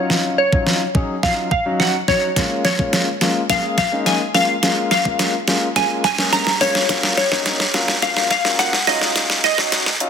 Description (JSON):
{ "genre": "dance-pop", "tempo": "106 BPM", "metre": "4/4", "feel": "straight", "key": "unclear", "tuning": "A4 = 439 Hz", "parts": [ { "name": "glassy wavetable pluck", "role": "melody", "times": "0.0-10.1 s", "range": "Db5 to Bb5", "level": "-20 LUFS", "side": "equal", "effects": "chorus, ping-pong delay" }, { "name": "warm grand piano", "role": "accompaniment", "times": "0.0-10.1 s", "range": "Gb3 to Ab4", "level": "-23 LUFS", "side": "left 3 dB", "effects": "sidechain pumping" }, { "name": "pop drum kit", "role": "drums", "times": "0.1-10.1 s", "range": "hi-hat, kick drum, snare drum", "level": "-18 LUFS", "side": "right 1 dB", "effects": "none" } ], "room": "light reverb, digital ambience", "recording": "dense, heavily limited modern master, high-pass filter", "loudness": "-15 LUFS", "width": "side -7 dB against mid", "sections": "0.0-10.1 A section", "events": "build-up 0.0-10.1; drum fill 0.0-10.1; filter sweep 0.0-10.1", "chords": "0.0 Ebm9; 2.4 Db6; 4.6 Bbm7; 6.9 Gbmaj7; 8.9 Ebm9" }